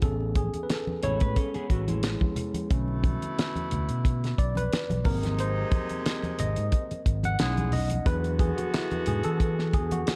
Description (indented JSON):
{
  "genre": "lush 1970s-style soul",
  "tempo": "90 BPM",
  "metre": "4/4",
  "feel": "swing 54% on 16ths",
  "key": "unclear",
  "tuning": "A4 = 438 Hz",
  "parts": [
    { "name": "tine electric piano", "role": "accompaniment", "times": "0.0-10.2 s", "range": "D3 to F#5", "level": "-34 LUFS", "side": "equal", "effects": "overdrive" },
    { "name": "fingered electric bass", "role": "bass", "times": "0.0-10.1 s", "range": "G#1 to E3", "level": "-31 LUFS", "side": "equal", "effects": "none" },
    { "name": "damped 70s drum kit", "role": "drums", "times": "0.0-10.2 s", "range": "hi-hat, kick drum, snare drum", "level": "-29 LUFS", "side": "equal", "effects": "none" },
    { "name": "congas", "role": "percussion", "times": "0.0-10.1 s", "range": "none", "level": "-37 LUFS", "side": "equal", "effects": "none" },
    { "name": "electric guitar through a small old amp", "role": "riff", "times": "1.0-2.7 s", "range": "G#3 to C#5", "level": "-35 LUFS", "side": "equal", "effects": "none" },
    { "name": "warm horn section", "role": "stabs", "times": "2.7-10.2 s", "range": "B2 to G#4", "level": "-37 LUFS", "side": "equal", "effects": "none" }
  ],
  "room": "studio ambience",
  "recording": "dark, warm production",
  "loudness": "-27 LUFS",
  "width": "mono",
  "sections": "0.0-10.2 A section",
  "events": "tine electric piano solo 0.0-10.2",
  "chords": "0.0 Amaj7; 2.7 Bm7; 5.1 G#7; 7.4 B7; 8.1 E7",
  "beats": "| 0.03 0.70 1.37 2.04 | 2.71 3.38 4.05 4.72 | 5.39 6.06 6.73 7.40 | 8.06 8.73 9.40 10.07"
}